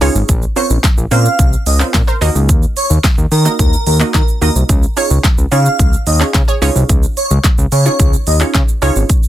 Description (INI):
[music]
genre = dance-pop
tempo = 109 BPM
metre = 4/4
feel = straight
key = Db major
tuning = A4 = 439 Hz
[part]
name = analog pluck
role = accompaniment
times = 0.0-9.1 s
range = Bb3 to Eb5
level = -18 LUFS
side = right 2 dB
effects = chorus, sidechain pumping
[part]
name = fat analog bass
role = bass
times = 0.0-9.0 s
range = Ab1 to Eb3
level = -13 LUFS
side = equal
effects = sidechain pumping
[part]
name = house drum kit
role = drums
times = 0.0-9.3 s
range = handclaps, hi-hat, kick drum, shaker, snare drum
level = -13 LUFS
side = equal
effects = none
[part]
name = airy dreamy lead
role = melody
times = 0.6-8.4 s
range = Bb4 to F5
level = -19 LUFS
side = right 1 dB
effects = chorus, sidechain pumping, tape echo
[sound]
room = little or no reverb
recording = dense, heavily limited modern master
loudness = -10 LUFS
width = side -13 dB against mid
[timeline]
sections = 0.0-9.3 A section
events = none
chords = 0.3 Bbmadd9; 2.2 Ebm; 4.7 Dbadd9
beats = | 0.29 0.84 1.39 1.94 | 2.49 3.04 3.59 4.14 | 4.69 5.24 5.79 6.34 | 6.89 7.44 8.00 8.54 | 9.10